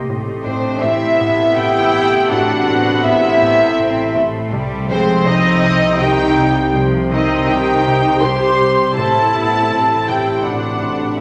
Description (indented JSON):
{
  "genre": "cinematic, suspense film score",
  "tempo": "81 BPM",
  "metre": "3/4",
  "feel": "straight",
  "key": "unclear",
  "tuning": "A4 = 441 Hz",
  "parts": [
    { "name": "deep dark ambient pad", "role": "sustained chords", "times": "0.0-11.2 s", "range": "G4 to C6", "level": "-30 LUFS", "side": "equal", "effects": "none" },
    { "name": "mellow trombone section", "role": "sustained chords", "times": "0.0-11.2 s", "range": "C3 to C4", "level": "-29 LUFS", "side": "equal", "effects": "none" },
    { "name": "rich symphonic cello section", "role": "bass", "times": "0.0-11.2 s", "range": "Eb3 to D4", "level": "-25 LUFS", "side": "equal", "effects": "none" },
    { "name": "warm symphonic double bass section", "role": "bass", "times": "0.0-11.2 s", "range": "A1 to C2", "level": "-28 LUFS", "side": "equal", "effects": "none" },
    { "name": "rubbery square bass", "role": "riff", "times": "0.1-11.0 s", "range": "A2 to C3", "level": "-27 LUFS", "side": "equal", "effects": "none" },
    { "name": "warm symphonic violin section", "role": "melody", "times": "0.4-11.2 s", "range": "C5 to C6", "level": "-25 LUFS", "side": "equal", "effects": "none" },
    { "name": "dark chamber viola section", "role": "accompaniment", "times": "0.4-11.2 s", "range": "C3 to G4", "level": "-23 LUFS", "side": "equal", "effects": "none" },
    { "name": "dark French horn section", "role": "sustained chords", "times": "0.4-11.2 s", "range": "C4 to C5", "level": "-22 LUFS", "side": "equal", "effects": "none" },
    { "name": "warm studio violin section", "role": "second line", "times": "0.5-11.2 s", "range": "C5 to C6", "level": "-21 LUFS", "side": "equal", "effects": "none" }
  ],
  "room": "wet scoring stage reverb, RT60 1.7 s",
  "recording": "none",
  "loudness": "-15 LUFS",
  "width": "mono",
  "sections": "0.0-11.2 A section",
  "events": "none",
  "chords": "0.1 Amadd9; 4.5 Cm; 9.0 Amadd9",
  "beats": "| 0.08 0.82 1.56 | 2.31 3.05 3.79 | 4.53 5.27 6.01 | 6.75 7.49 8.23 | 8.97 9.71 10.45 | 11.19"
}